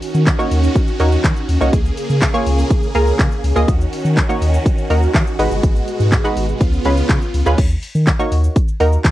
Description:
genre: dance-pop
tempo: 123 BPM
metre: 4/4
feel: straight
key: Eb minor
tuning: A4 = 439 Hz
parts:
  - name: supersaw chords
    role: sustained chords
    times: 0.0-7.6 s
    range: Cb3 to Ab4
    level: -22 LUFS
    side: right 1 dB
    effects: phaser, sidechain pumping, cassette tape
  - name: pop drum kit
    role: drums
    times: 0.0-9.1 s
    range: crash cymbal, handclaps, hi-hat, kick drum, shaker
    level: -16 LUFS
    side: equal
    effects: cassette tape
  - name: warm sub bass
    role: bass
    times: 0.1-9.1 s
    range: G1 to Eb3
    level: -16 LUFS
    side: equal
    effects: sidechain pumping
  - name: punchy chord stab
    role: accompaniment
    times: 0.4-9.1 s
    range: Ab3 to Eb5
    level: -19 LUFS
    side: right 1 dB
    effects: chorus, cassette tape
room: little or no reverb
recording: home recording on cassette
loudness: -13 LUFS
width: side -15 dB against mid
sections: 0.0-7.6 A section; 7.6-9.1 A section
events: none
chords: 0.0 Ebm7; 1.7 Bbm7/Db; 3.7 Ebm7; 5.4 Abm7; 6.6 Db7; 7.6 Ebm7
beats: 0.27 0.76 1.24 | 1.73 2.22 2.71 3.19 | 3.68 4.17 4.66 5.15 | 5.63 6.12 6.61 7.10 | 7.58 8.07 8.56 9.05

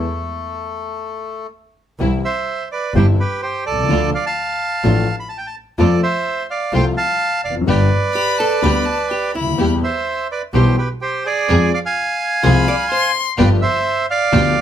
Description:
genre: tango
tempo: 126 BPM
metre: 4/4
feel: rubato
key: C major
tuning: A4 = 440 Hz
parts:
  - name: bandoneon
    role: melody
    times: 0.0-14.6 s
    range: A3 to B5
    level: -19 LUFS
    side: right 3 dB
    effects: none
  - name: warm concert grand piano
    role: accompaniment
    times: 0.0-14.5 s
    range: G1 to A4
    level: -19 LUFS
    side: left 4 dB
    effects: none
  - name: dark studio string section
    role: stabs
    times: 0.0-14.5 s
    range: G3 to Ab4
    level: -22 LUFS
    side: right 1 dB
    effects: none
  - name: clear double bass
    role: bass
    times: 0.0-14.5 s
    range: F1 to F2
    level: -19 LUFS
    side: right 1 dB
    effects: none
  - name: warm violin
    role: second line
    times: 8.1-13.2 s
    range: G5 to C6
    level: -21 LUFS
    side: left 7 dB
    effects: none
  - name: archtop guitar, miked and amplified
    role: second line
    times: 8.2-13.2 s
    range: E4 to D5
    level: -24 LUFS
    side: right 1 dB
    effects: none
room: light reverb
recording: close, detailed microphones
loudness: -15 LUFS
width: side -10 dB against mid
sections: 0.0-2.0 A section; 2.0-14.6 B section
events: stop 0.1-2.0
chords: 0.1 N.C.; 2.0 C; 3.9 Dm; 5.8 F; 7.7 G; 9.6 Em; 11.5 Fm; 13.4 G7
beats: | 0.07 0.55 1.03 1.51 | 1.99 2.47 2.95 3.42 | 3.90 4.37 4.85 5.32 | 5.79 6.26 6.73 7.21 | 7.68 8.15 8.63 9.11 | 9.59 10.06 10.54 11.02 | 11.49 11.96 12.44 12.91 | 13.38 13.86 14.33

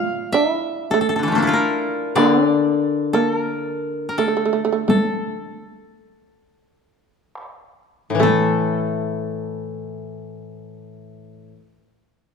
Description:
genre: japanese traditional, Japanese chamber music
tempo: 35-52 BPM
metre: 4/4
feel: rubato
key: A miyako bushi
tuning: A4 = 441 Hz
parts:
  - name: koto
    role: melody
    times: 0.0-11.6 s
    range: D3 to F5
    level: -22 LUFS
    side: left 2 dB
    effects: none
  - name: shamisen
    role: second line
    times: 0.0-11.6 s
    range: A3 to F4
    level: -22 LUFS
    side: right 6 dB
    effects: none
  - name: koto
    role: accompaniment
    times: 2.2-11.6 s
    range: A2 to A3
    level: -21 LUFS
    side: left 5 dB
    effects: none
  - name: taiko ensemble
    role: percussion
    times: 2.2-9.0 s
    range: none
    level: -24 LUFS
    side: left 1 dB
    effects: none
room: moderate recital hall reverb, RT60 1.6 s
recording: dark, warm production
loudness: -17 LUFS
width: side -6 dB against mid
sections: 0.0-8.2 A section; 8.2-12.3 B section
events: slowing down 0.0-8.2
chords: none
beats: 0.93 | 2.17 3.49 4.90 6.49 | 8.21 9.92 11.55

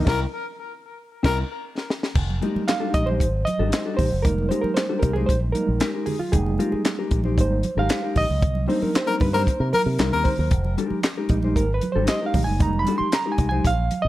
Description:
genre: funk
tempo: 115 BPM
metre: 4/4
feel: straight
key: F dorian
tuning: A4 = 440 Hz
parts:
  - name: breathy tenor saxophone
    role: second line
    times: 0.0-1.4, 9.1-10.3 s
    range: Bb4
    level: -26 LUFS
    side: left 4 dB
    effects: tape echo
  - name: mellow electric guitar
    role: accompaniment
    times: 0.0-13.7 s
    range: G3 to D#5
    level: -27 LUFS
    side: left 4 dB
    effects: none
  - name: reed electric piano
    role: stabs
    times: 0.0-14.1 s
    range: G3 to C6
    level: -25 LUFS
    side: right 2 dB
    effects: fast tremolo
  - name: fingered electric bass with an envelope filter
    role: bass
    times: 0.0-14.1 s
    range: F1 to C3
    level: -24 LUFS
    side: equal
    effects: none
  - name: compact cocktail drum kit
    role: drums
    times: 0.1-14.0 s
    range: crash cymbal, handclaps, hi-hat, kick drum, snare drum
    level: -24 LUFS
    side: equal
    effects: none
  - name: congas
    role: percussion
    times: 2.2-14.0 s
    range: none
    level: -32 LUFS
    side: right 4 dB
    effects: none
room: little or no reverb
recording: none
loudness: -20 LUFS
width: side -15 dB against mid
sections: 0.0-2.2 A section; 2.2-14.1 B section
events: band accent 0.1-2.2, 8.4-10.5; drum fill 1.6-2.2; reed electric piano solo 2.2-14.1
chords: 0.0 C7#9; 2.2 Fm11; 8.4 Cm7; 10.5 Fm11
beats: | 0.07 0.59 1.11 1.64 | 2.16 2.68 3.20 3.73 | 4.25 4.77 5.29 5.81 | 6.34 6.86 7.38 7.90 | 8.42 8.95 9.47 9.99 | 10.51 11.03 11.56 12.08 | 12.60 13.12 13.64

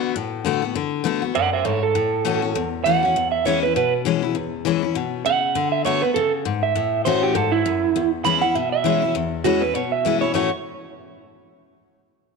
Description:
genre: rock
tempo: 200 BPM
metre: 4/4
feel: swing 58% on 8ths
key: A major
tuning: A4 = 440 Hz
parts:
  - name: electric guitar through a small old amp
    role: melody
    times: 0.0-10.5 s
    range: E4 to B5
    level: -20 LUFS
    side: right 9 dB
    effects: spring reverb, tape echo
  - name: picked steel-string acoustic guitar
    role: accompaniment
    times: 0.0-10.5 s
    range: E2 to F#4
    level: -22 LUFS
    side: left 10 dB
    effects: none
room: moderate echo chamber reverb, RT60 2.5 s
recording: 1960s-style stereo with parts hard left and right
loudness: -18 LUFS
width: side -4 dB against mid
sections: 0.0-9.1 A section; 9.1-10.3 B section; 10.3-11.5 C section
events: none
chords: 0.0 D6; 1.9 A6; 3.2 E6; 5.6 D6; 6.8 A6; 8.0 E6; 10.3 A6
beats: 0.15 0.45 | 0.75 1.05 1.35 1.65 | 1.95 2.25 2.55 2.85 | 3.15 3.45 3.75 4.05 | 4.35 4.65 4.95 5.25 | 5.55 5.85 6.15 6.45 | 6.75 7.05 7.35 7.65 | 7.95 8.25 8.55 8.85 | 9.15 9.45 9.75 10.05 | 10.35

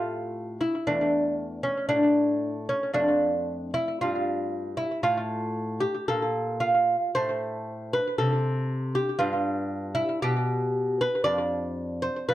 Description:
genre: classical, baroque-style dance for lute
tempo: 58 BPM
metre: 4/4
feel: rubato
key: A minor from 7.2 s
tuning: A4 = 440 Hz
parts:
  - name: lute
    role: solo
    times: 0.0-12.3 s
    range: E2 to D5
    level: -24 LUFS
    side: equal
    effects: slapback echo
room: light reverb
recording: dry, close 1970s-style studio recording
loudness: -24 LUFS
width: side -14 dB against mid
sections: 0.0-12.3 A section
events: none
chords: 0.0 Fmaj7; 0.9 A5/E; 3.0 Fmaj13; 7.2 Am; 9.2 G7; 11.3 Dm/F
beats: 0.87 1.90 | 2.95 4.00 5.04 6.07 | 7.15 8.20 9.21 10.24 | 11.27 12.30

